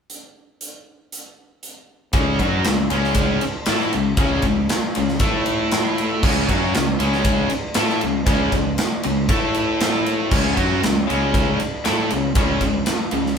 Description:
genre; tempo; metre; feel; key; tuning
hard rock; 118 BPM; 4/4; straight; C# minor; A4 = 440 Hz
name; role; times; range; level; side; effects
big rock drum kit; drums; 0.1-13.3 s; crash cymbal, hi-hat, kick drum, ride cymbal, snare drum; -21 LUFS; right 1 dB; none
cranked stack guitar; riff; 2.1-13.3 s; C#3 to A4; -23 LUFS; left 6 dB; overdrive
tight distorted guitar; riff; 2.1-13.3 s; C#3 to A4; -24 LUFS; right 7 dB; distortion
fuzz fingered electric bass; bass; 2.1-13.4 s; C#2 to A2; -24 LUFS; equal; overdrive
room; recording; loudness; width
moderate large studio reverb, RT60 1.1 s; band playing live in one room; -17 LUFS; side -6 dB against mid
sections
0.1-2.1 A section; 2.1-13.4 B section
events
none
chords
0.1 N.C.; 2.1 C#m; 5.2 A5; 6.2 C#m; 9.3 A5; 10.3 C#m

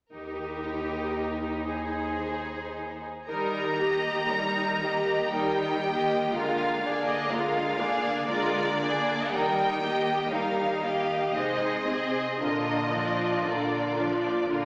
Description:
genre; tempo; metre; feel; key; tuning
classical, slow romantic movement for string orchestra; 59 BPM; 3/4; uneven beats, rubato; Eb major; A4 = 440 Hz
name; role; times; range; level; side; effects
rich chamber violin section; melody; 0.1-14.5 s; Bb4 to Bb5; -33 LUFS; equal; none
rich chamber cello section; bass; 0.1-14.7 s; Eb2 to Eb3; -40 LUFS; equal; none
warm studio violin section; second line; 0.2-14.7 s; D4 to Eb5; -33 LUFS; equal; none
rich symphonic viola section; accompaniment; 0.2-14.7 s; D3 to G4; -32 LUFS; equal; none
room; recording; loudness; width
wet scoring stage reverb, RT60 1.6 s; none; -28 LUFS; mono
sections
0.2-3.3 A section; 3.3-14.7 B section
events
none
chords
0.2 Eb; 6.3 Bb7/D; 9.3 Eb; 11.4 Ab/C; 12.4 Bb

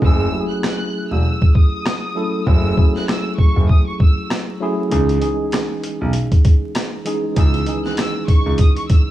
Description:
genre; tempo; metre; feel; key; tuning
hip hop, boom-bap hip-hop; 98 BPM; 4/4; swing 57% on 16ths; C# minor; A4 = 440 Hz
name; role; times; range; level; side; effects
rich studio violin section; melody; 0.0-9.1 s; C#6 to F#6; -28 LUFS; equal; high-pass filter, low-pass filter
tine electric piano; accompaniment; 0.0-9.1 s; D#3 to A4; -22 LUFS; equal; overdrive, fast stereo tremolo, cassette tape, high-pass filter, low-pass filter
dark grand piano; bass; 0.0-8.6 s; E1 to C#2; -19 LUFS; right 1 dB; none
boom bap sampler-style drum kit; drums; 0.0-9.1 s; hi-hat, kick drum, rim click, snare drum; -14 LUFS; equal; none
room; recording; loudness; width
little or no reverb; vinyl crackle; -15 LUFS; side -14 dB against mid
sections
0.0-9.1 A section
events
break 0.0-4.9; kick muted 4.9-5.5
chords
0.0 F#m7; 4.9 C#madd9

